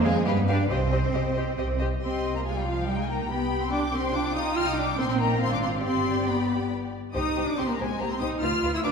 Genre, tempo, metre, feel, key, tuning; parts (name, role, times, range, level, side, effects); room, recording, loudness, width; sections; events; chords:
quick classical-period movement for string orchestra; 140 BPM; 3/4; straight; C minor; A4 = 439 Hz
rich studio violin section; melody; 0.0-8.9 s; G4 to F6; -31 LUFS; left 4 dB
rich studio violin section; second line; 0.0-8.9 s; Eb4 to G5; -31 LUFS; left 2 dB
rich studio viola section; accompaniment; 0.0-8.9 s; F3 to C5; -30 LUFS; equal
bright studio cello section; bass; 0.0-8.9 s; F3 to F4; -30 LUFS; right 2 dB
rich studio double bass section; bass; 0.0-8.9 s; G1 to G2; -30 LUFS; right 1 dB
wet scoring stage reverb, RT60 1.5 s; heard from further back in the room; -24 LUFS; side -6 dB against mid
0.0-2.0 A section; 2.0-8.9 A section
0.3 G7; 0.7 Cm; 3.3 G7/C; 4.6 Cm; 5.4 Fm/Ab; 5.8 G; 7.1 Cm